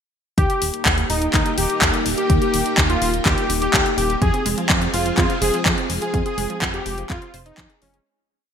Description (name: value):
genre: italo disco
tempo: 125 BPM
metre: 4/4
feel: straight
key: F minor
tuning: A4 = 439 Hz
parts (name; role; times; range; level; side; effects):
- wide unison lead; melody; 0.4-8.0 s; Db4 to Ab4; -23 LUFS; left 1 dB; digital delay
- string machine, full ensemble; sustained chords; 0.4-8.0 s; Bb3 to Ab4; -26 LUFS; equal; ensemble chorus
- chorused synth bass; bass; 0.4-8.0 s; Eb1 to F2; -24 LUFS; equal; none
- electronic kick drum; drums; 0.4-7.7 s; none; -22 LUFS; equal; overdrive
- house drum kit; drums; 0.4-8.0 s; handclaps, hi-hat; -21 LUFS; left 1 dB; overdrive, gated reverb
- analog pluck; arpeggios; 4.2-8.0 s; F3 to C5; -30 LUFS; right 4 dB; chorus, ping-pong delay
room: moderate plate reverb, RT60 1.9 s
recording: bright 1980s-style digital production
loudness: -17 LUFS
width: side -8 dB against mid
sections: 0.4-8.1 chorus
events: fade-out 5.5-8.1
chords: 0.4 Eb; 4.2 Fm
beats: | 0.38 0.86 1.34 1.82 | 2.30 2.78 3.26 3.74 | 4.22 4.70 5.18 5.66 | 6.14 6.62 7.10 7.58